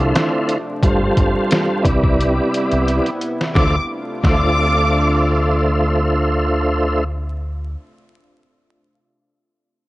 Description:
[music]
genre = hip hop, boom-bap hip-hop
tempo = 88 BPM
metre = 4/4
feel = swing 55% on 16ths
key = D dorian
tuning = A4 = 439 Hz
[part]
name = tonewheel organ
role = accompaniment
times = 0.0-7.0 s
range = G2 to E5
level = -18 LUFS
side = equal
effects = chorus vibrato, fast rotary speaker, cassette tape, high-pass filter, low-pass filter
[part]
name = lush unison pad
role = sustained chords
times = 0.0-7.0 s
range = C3 to F4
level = -26 LUFS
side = equal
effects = chorus, high-pass filter, low-pass filter, cassette tape
[part]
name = deep dub fingered electric bass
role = bass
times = 0.0-7.7 s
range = G1 to D2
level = -20 LUFS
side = equal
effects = none
[part]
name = trip hop sampler-style drum kit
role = drums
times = 0.2-4.4 s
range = hi-hat, kick drum, snare drum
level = -18 LUFS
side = equal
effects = cassette tape
[part]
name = warm symphonic violin section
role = melody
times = 3.6-5.6 s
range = D6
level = -21 LUFS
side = equal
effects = high-pass filter, low-pass filter, tape echo
[sound]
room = light reverb, digital ambience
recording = home recording on cassette, vinyl crackle, nothing above 10.7 kHz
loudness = -15 LUFS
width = side -18 dB against mid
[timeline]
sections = 0.0-3.6 A section; 3.6-6.3 B section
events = drum fill 2.9-3.6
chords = 0.0 Dm7; 0.8 G7sus4; 1.9 Cmaj7; 3.6 Dm7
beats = 0.15 | 0.83 1.51 2.19 2.87 | 3.56 4.24 4.92 5.60

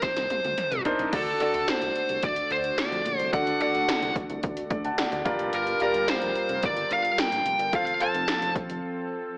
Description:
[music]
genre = 1980s-style pop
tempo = 109 BPM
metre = 4/4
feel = straight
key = unclear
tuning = A4 = 442 Hz
[part]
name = fuzz lead guitar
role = melody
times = 0.0-8.5 s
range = A4 to A5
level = -26 LUFS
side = equal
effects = distortion
[part]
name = clear baby grand piano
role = accompaniment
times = 0.0-9.4 s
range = G2 to Bb5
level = -29 LUFS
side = equal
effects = none
[part]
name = 80s electronic pad drums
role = drums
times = 0.0-8.8 s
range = crash cymbal, hi-hat, kick drum, snare drum, toms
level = -30 LUFS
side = equal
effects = gated reverb on snare and toms, gated reverb
[part]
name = chorused synth bass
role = bass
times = 0.2-8.8 s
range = F1 to F2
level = -37 LUFS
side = equal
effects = none
[part]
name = warm analog pad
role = sustained chords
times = 1.1-9.4 s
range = D3 to Bb4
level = -36 LUFS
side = equal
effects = chorus
[sound]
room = light reverb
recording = AM radio sound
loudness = -23 LUFS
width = side -35 dB against mid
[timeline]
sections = 0.0-1.1 A section; 1.1-9.4 B section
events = drum fill 0.0-1.1; grand piano fill 4.4-5.5; break 8.8-9.4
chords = 0.0 Cm9; 1.1 D; 5.3 Gm7; 7.7 F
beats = 0.03 0.58 | 1.13 1.68 2.23 2.78 | 3.33 3.88 4.43 4.98 | 5.53 6.08 6.63 7.18 | 7.73 8.28 8.83

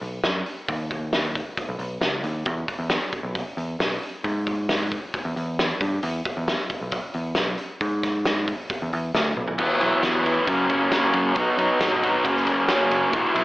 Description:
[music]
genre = quiet-loud alternative rock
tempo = 135 BPM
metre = 4/4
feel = straight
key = unclear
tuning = A4 = 440 Hz
[part]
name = overdriven picked electric bass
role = bass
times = 0.0-13.4 s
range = E1 to G#2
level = -28 LUFS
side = equal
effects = none
[part]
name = loose indie drum kit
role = drums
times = 0.0-13.4 s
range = crash cymbal, hi-hat, kick drum, ride cymbal, snare drum, toms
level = -26 LUFS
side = equal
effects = none
[part]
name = fuzz guitar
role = riff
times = 9.6-13.4 s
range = F#2 to E4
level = -19 LUFS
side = equal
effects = distortion
[sound]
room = moderate large studio reverb, RT60 0.9 s, studio ambience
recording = AM radio sound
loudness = -21 LUFS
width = side -19 dB against mid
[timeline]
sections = 0.0-9.6 A section; 9.6-13.4 B section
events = drum fill 9.4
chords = 0.0 B; 2.5 E5; 5.8 N.C.; 6.0 E5; 9.1 N.C.; 9.6 Esus2; 10.5 F#; 11.4 B; 12.3 F#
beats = 0.24 | 0.69 1.13 1.58 2.02 | 2.47 2.92 3.36 3.81 | 4.25 4.70 5.14 5.59 | 6.03 6.48 6.92 7.37 | 7.81 8.26 8.70 9.14 | 9.59 10.03 10.48 10.92 | 11.37 11.81 12.25 12.70 | 13.14

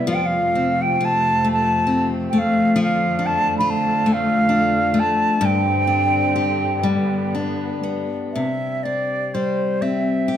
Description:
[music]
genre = celtic folk, Celtic slow air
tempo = 39-46 BPM (dotted quarters)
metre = 6/8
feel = rubato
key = unclear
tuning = A4 = 439 Hz
[part]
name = wooden flute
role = melody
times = 0.0-10.4 s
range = C5 to B5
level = -20 LUFS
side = right 2 dB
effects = none
[part]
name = picked steel-string acoustic guitar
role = accompaniment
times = 0.0-10.4 s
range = G2 to G4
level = -21 LUFS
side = left 3 dB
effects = none
[part]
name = rich studio string section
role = sustained chords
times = 0.0-8.3 s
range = F2 to C4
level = -26 LUFS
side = right 3 dB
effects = none
[sound]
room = moderate recital hall reverb, RT60 1.4 s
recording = close, detailed microphones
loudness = -17 LUFS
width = side -10 dB against mid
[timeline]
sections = 0.0-8.3 A section; 8.3-10.4 B section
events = none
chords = 0.1 F; 2.8 Dm/F; 5.4 Gsus4; 6.8 G; 8.3 C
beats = | 0.09 1.46 | 2.77 4.07 | 5.42 6.84 | 8.34 9.81

